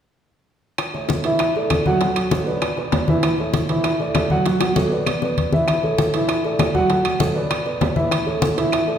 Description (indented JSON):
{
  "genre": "Afro-Cuban jazz",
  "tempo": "196 BPM",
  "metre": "4/4",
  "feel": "straight",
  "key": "A major",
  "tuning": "A4 = 440 Hz",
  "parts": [
    { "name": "bongos", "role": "percussion", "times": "0.8-8.9 s", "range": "none", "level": "-27 LUFS", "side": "left 4 dB", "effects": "none" },
    { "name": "claves", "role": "percussion", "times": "0.8-8.9 s", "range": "none", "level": "-33 LUFS", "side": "equal", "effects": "none" },
    { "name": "congas", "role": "percussion", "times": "0.8-9.0 s", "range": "none", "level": "-23 LUFS", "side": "left 2 dB", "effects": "none" },
    { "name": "timbales", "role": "percussion", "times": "0.8-8.9 s", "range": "none", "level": "-27 LUFS", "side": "right 5 dB", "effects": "none" },
    { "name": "dark grand piano", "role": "accompaniment", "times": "0.9-9.0 s", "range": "E3 to F#5", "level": "-20 LUFS", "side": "right 1 dB", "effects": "none" }
  ],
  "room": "wet recital hall reverb, RT60 1.7 s",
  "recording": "recorded in a church or concert hall",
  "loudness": "-17 LUFS",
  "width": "side -9 dB against mid",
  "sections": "0.8-9.0 A section",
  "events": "drum fill 4.5-5.7",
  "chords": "0.8 A; 1.4 Dsus2; 2.0 F#m; 2.6 E5; 3.2 A; 3.8 Dsus2; 4.5 F#m; 5.1 E5; 5.7 A; 6.3 Dsus2; 6.9 F#m; 7.5 E5; 8.1 A",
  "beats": "| 0.78 1.09 1.40 1.70 | 2.01 2.31 2.62 2.92 | 3.23 3.54 3.84 4.15 | 4.46 4.76 5.07 5.37 | 5.68 5.98 6.29 6.59 | 6.90 7.20 7.51 7.81 | 8.12 8.42 8.73"
}